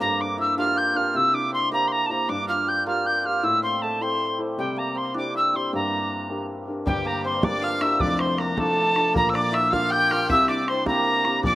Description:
celtic folk, Celtic jig; 105 BPM (dotted quarters); 6/8; straight; G dorian; A4 = 440 Hz
wooden whistle; melody; 0.0-11.6 s; G5 to G6; -22 LUFS; equal; slapback echo
hammered dulcimer; second line; 0.0-11.6 s; G3 to G4; -28 LUFS; right 1 dB; slapback echo
warm baby grand piano; accompaniment; 0.0-11.6 s; F1 to C5; -29 LUFS; left 2 dB; slapback echo
rich fiddle; second line; 6.9-11.6 s; G4 to G5; -29 LUFS; left 2 dB; slapback echo
bodhran; percussion; 6.9-11.5 s; -29 LUFS; right 1 dB
little or no reverb; recorded outdoors, with no room sound; -20 LUFS; side -16 dB against mid
0.0-6.9 A section; 6.9-11.6 A section
0.0 Gm; 1.1 C; 2.3 Gm7; 3.4 Am; 4.6 C; 5.7 Gm; 8.0 Dm/F; 9.2 Bb; 10.3 C
| 0.01 0.58 | 1.15 1.72 | 2.29 2.87 | 3.44 4.01 | 4.58 5.16 | 5.73 6.30 | 6.87 7.44 | 8.02 8.59 | 9.16 9.73 | 10.30 10.87 | 11.44

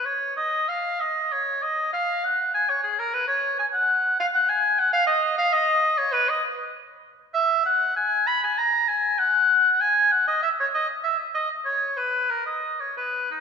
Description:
classical, baroque-style fantasia for unaccompanied oboe; 98 BPM; 3/4; rubato; B major from 7.3 s; A4 = 440 Hz
clear oboe; solo; 0.0-13.4 s; D#4 to B5; -20 LUFS; equal
wet scoring stage reverb, RT60 2.0 s; minimal, uncompressed stereo recording; -20 LUFS; side -6 dB against mid
0.1-13.4 A section
| 0.06 0.69 1.31 | 1.92 2.53 3.13 | 3.74 4.34 4.93 | 5.53 6.13 6.74 | 7.35 7.96 8.57 | 9.18 9.79 10.41 | 11.03 11.66 12.29 | 12.96

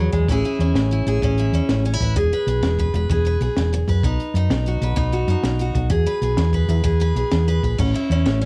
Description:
highlife guitar band; 128 BPM (dotted quarters); 12/8; straight; A major; A4 = 437 Hz
picked steel-string acoustic guitar; accompaniment; 0.0-8.5 s; A2 to B4; -25 LUFS; equal; cassette tape, plate reverb
hollow-body short-scale fingered electric bass; bass; 0.0-8.5 s; E1 to F#2; -22 LUFS; equal
compact cocktail drum kit; drums; 0.1-8.5 s; crash cymbal, hi-hat, kick drum, ride cymbal, snare drum; -28 LUFS; equal
little or no reverb; home recording on cassette; -20 LUFS; mono
0.0-7.8 A section
0.3 Amaj7; 2.2 E; 4.0 B; 5.9 E; 7.8 A
| 0.28 0.75 1.22 1.69 | 2.16 2.62 3.09 3.56 | 4.03 4.50 4.97 5.44 | 5.91 6.38 6.85 7.32 | 7.79 8.25

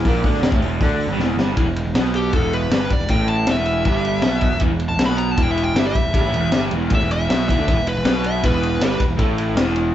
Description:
garage rock duo or trio; 158 BPM; 4/4; straight; E minor; A4 = 440 Hz
crunchy overdriven guitar; riff; 0.0-9.9 s; E2 to D4; -22 LUFS; right 1 dB
fuzz picked electric bass; bass; 0.0-9.9 s; E1 to D2; -23 LUFS; right 1 dB; overdrive
crunchy breakbeat drum kit; drums; 0.1-9.9 s; hi-hat, kick drum, ride cymbal, snare drum; -21 LUFS; left 1 dB
fuzz lead guitar; melody; 2.2-9.0 s; G4 to B5; -23 LUFS; left 1 dB; distortion
moderate large studio reverb, RT60 1.2 s; band playing live in one room, nothing above 7.9 kHz; -16 LUFS; side -11 dB against mid
0.0-1.6 A section; 1.6-9.9 B section
drum fill 1.2-1.6; lead electric guitar solo 1.6-9.9
0.0 Em
| 0.06 0.44 0.82 1.20 | 1.58 1.96 2.34 2.72 | 3.10 3.48 3.87 4.25 | 4.63 5.01 5.39 5.77 | 6.15 6.53 6.91 7.29 | 7.68 8.06 8.44 8.82 | 9.20 9.58

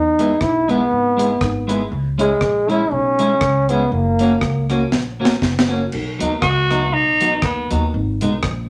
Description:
ska; 120 BPM; 4/4; swing 56% on 8ths; B major; A4 = 436 Hz
clear trombone; melody; 0.0-4.7 s; G#3 to E4; -19 LUFS; equal
upright bass; bass; 0.0-8.7 s; F#1 to E2; -25 LUFS; equal
clean electric guitar; accompaniment; 0.2-8.3 s; F#3 to F#4; -24 LUFS; equal; slapback echo
warm upright piano; stabs; 0.2-5.8 s; B3 to C#5; -30 LUFS; equal
deep reggae drum kit; drums; 0.2-8.6 s; crash cymbal, hi-hat, kick drum, rim click, snare drum; -23 LUFS; equal; slapback echo
raspy alto saxophone; melody; 6.4-7.7 s; B3 to F#4; -19 LUFS; equal
moderate studio reverb, RT60 0.8 s; -18 LUFS; mono
0.0-5.9 A section; 5.9-8.7 B section
drum fill 4.9-5.9; alto saxophone solo 5.9-8.7
0.0 E; 1.9 C#m; 3.9 F#; 5.9 B; 7.9 G#m
0.41 0.91 1.41 | 1.91 2.41 2.91 3.41 | 3.91 4.42 4.92 5.42 | 5.92 6.42 6.93 7.43 | 7.93 8.43

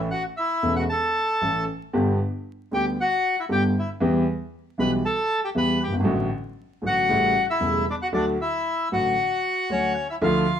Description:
tango; 116 BPM; 4/4; rubato; D major; A4 = 442 Hz
warm concert grand piano; accompaniment; 0.0-10.4 s; E1 to A4; -23 LUFS; equal
bandoneon; melody; 0.1-10.6 s; C#4 to B5; -23 LUFS; left 1 dB
moderate studio reverb, RT60 0.9 s; band playing live in one room, vinyl crackle; -21 LUFS; side -9 dB against mid
0.0-10.2 A section
0.0 A; 1.9 G; 4.0 Em; 6.1 D/A; 7.1 A7; 8.1 D
0.37 0.89 1.42 | 1.94 2.46 2.98 3.50 | 4.01 4.53 5.04 5.55 | 6.06 6.58 7.10 7.62 | 8.13 8.65 9.17 9.70 | 10.22

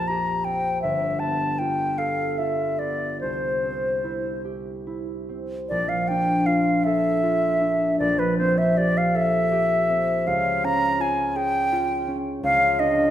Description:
classical, impressionist duo for flute and harp; 47-56 BPM (dotted quarters); 6/8; rubato; A4 = 439 Hz
concert flute; melody; 0.0-13.1 s; B4 to Bb5; -22 LUFS; left 1 dB
concert harp; accompaniment; 0.0-13.1 s; G1 to Bb4; -25 LUFS; right 1 dB
wet scoring stage reverb, RT60 1.6 s; -20 LUFS; side -11 dB against mid
0.0-5.7 A section; 5.7-13.1 A section
0.0 Bbsus2; 0.8 G9; 3.2 Cmaj7; 5.7 Bbmaj7; 8.0 Am7/Bb; 10.3 Dbmaj7; 12.4 Csus2/Db
| 0.83 1.99 | 3.22 4.45 | 5.70 6.85 | 8.00 9.16 | 10.27 11.36 | 12.44

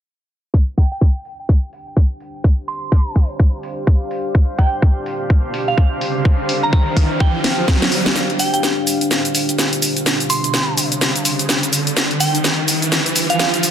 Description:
bass house; 126 BPM; 4/4; swing 60% on 16ths; A4 = 440 Hz
electronic kick drum; drums; 0.5-7.8 s; -13 LUFS; equal; overdrive
deep dark ambient pad; texture; 2.3-13.7 s; D4 to F5; -23 LUFS; equal; chorus, built-in reverb, sidechain pumping
soft synth bell; melody; 0.8-13.5 s; F5 to C6; -24 LUFS; right 3 dB; chorus, tape echo
house drum kit; drums; 0.8-13.7 s; cabasa, hi-hat, snare drum; -18 LUFS; left 1 dB; high-pass filter on hats, soft clipping on snare, high-pass filter on snare, high-pass filter on perc, high-pass filter on room
riser; sound effects; 5.1-13.7 s; -23 LUFS; right 1 dB
light reverb, digital ambience; dense, heavily limited modern master, low-pass filter; -15 LUFS; side -10 dB against mid
0.5-8.2 A section; 8.2-13.7 B section
fade-in on ambient pad 0.5-8.2; filter sweep 0.5-8.2; riser 5.1-8.2, 8.2-13.7; drum fill 7.4-8.2, 8.2-13.7; build-up 8.2-13.7
0.5 G5
| 0.54 1.01 1.49 1.97 | 2.44 2.92 3.39 3.87 | 4.35 4.82 5.30 5.78 | 6.25 6.73 7.20 7.68 | 8.16 8.63 9.11 9.59 | 10.06 10.54 11.01 11.49 | 11.97 12.44 12.92 13.39

